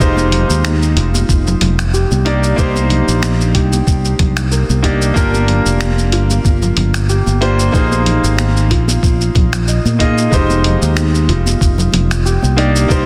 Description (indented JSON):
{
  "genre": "sunset chillout",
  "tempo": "93 BPM",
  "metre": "4/4",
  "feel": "swing 55% on 16ths",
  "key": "F dorian",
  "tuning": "A4 = 437 Hz",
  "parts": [
    { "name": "clear concert grand piano", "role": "accompaniment", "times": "0.0-13.1 s", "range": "Ab3 to Eb5", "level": "-20 LUFS", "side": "equal", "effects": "delay" },
    { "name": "concert harp", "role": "arpeggios", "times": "0.0-13.1 s", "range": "D4 to Eb5", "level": "-25 LUFS", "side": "equal", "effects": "low-pass filter, delay" },
    { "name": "fretless electric bass", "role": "bass", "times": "0.0-13.1 s", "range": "F1 to Bb2", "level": "-17 LUFS", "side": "equal", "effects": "tube saturation, subtle chorus" },
    { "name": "dusty soul sampler-style drum kit", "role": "drums", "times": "0.0-13.0 s", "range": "finger snaps, hi-hat, shaker", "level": "-24 LUFS", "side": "equal", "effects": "soft clipping on snare" },
    { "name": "electronic kick drum", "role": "drums", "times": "0.0-13.0 s", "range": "none", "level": "-16 LUFS", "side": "equal", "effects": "none" },
    { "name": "congas", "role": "percussion", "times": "0.2-12.5 s", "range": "none", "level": "-25 LUFS", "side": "equal", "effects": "none" }
  ],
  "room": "light reverb, small room ambience",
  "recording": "dense, heavily limited modern master",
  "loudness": "-14 LUFS",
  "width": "mono",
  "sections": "0.0-13.1 A section",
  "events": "filter sweep on harp 0.0-13.1",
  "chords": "0.0 Fm9; 2.3 Cm7; 5.2 Gm7; 7.7 Bb9sus4; 10.3 Fm9"
}